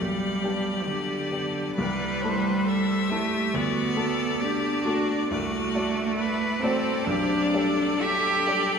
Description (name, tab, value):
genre	classical, slow romantic movement for piano quartet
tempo	61-71 BPM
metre	4/4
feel	rubato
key	G major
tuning	A4 = 440 Hz
part	bright violin	melody	0.0-8.8 s	C5 to E5	-32 LUFS	left 7 dB	none
part	rich cello	second line	0.0-8.8 s	D3 to G4	-26 LUFS	right 2 dB	none
part	clear baby grand piano	accompaniment	0.0-8.8 s	B1 to D5	-30 LUFS	left 1 dB	none
part	clear viola	accompaniment	0.0-8.8 s	F#4 to B4	-32 LUFS	left 1 dB	none
room	wet church reverb, RT60 3.9 s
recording	recorded in a church or concert hall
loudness	-23 LUFS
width	side -6 dB against mid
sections	0.0-8.8 A section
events	none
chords	0.0 G/B; 1.8 Am7/C; 3.5 D; 5.3 D7/C; 7.1 G/B